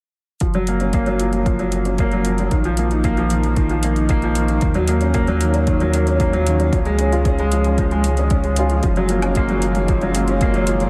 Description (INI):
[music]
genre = piano and strings electronica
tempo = 114 BPM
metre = 4/4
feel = straight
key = F# major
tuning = A4 = 439 Hz
[part]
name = lush unison pad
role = sustained chords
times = 6.6-10.9 s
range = D#3 to E#4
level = -32 LUFS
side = equal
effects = none
[part]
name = warm upright piano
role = riff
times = 0.4-10.9 s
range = D#3 to E#4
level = -21 LUFS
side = equal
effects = lush chorus, diffuse ambient delay
[part]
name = warm sub bass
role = bass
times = 0.4-10.9 s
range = F#1 to D#2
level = -23 LUFS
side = equal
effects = sidechain pumping
[part]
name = electronic hi-hat and woodblock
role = drums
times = 0.4-10.9 s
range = none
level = -34 LUFS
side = equal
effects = overdrive
[part]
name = electronic kick drum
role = drums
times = 0.4-10.5 s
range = none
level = -22 LUFS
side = equal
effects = overdrive
[sound]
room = moderate huge ambient reverb, RT60 7.9 s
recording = dreamy mix soaked in reverb, lossy compression artefacts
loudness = -18 LUFS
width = mono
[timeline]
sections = 0.4-10.9 A section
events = none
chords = 0.4 F#maj7; 2.5 A#sus4; 4.6 D#m7; 6.7 C#; 8.8 F#maj7